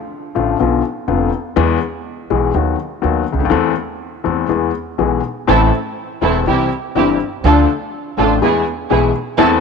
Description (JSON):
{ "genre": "tango", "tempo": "123 BPM", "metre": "4/4", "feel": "rubato", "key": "unclear", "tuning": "A4 = 438 Hz", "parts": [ { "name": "clear upright piano", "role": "accompaniment", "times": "0.3-9.6 s", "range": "E1 to A4", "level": "-16 LUFS", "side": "left 9 dB", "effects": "none" }, { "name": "upright bass", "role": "bass", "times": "0.4-9.6 s", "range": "E1 to E2", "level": "-20 LUFS", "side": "right 3 dB", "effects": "none" }, { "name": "rich studio string section", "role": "stabs", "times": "5.5-9.6 s", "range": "B3 to A4", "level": "-18 LUFS", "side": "right 12 dB", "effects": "none" } ], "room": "moderate plate reverb, RT60 3.3 s", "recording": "1960s-style stereo with parts hard left and right", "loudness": "-14 LUFS", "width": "side -5 dB against mid", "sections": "0.0-9.6 A section", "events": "none", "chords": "0.0 Dm; 0.6 Bdim; 1.6 E; 2.5 B/D#; 3.5 Am/E; 4.5 E; 5.5 Am; 6.5 C; 7.4 Dm; 8.4 E", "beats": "0.12 0.60 1.08 | 1.57 2.05 2.54 3.03 | 3.52 4.01 4.50 4.99 | 5.49 5.98 6.47 6.96 | 7.45 7.93 8.42 8.90 | 9.38" }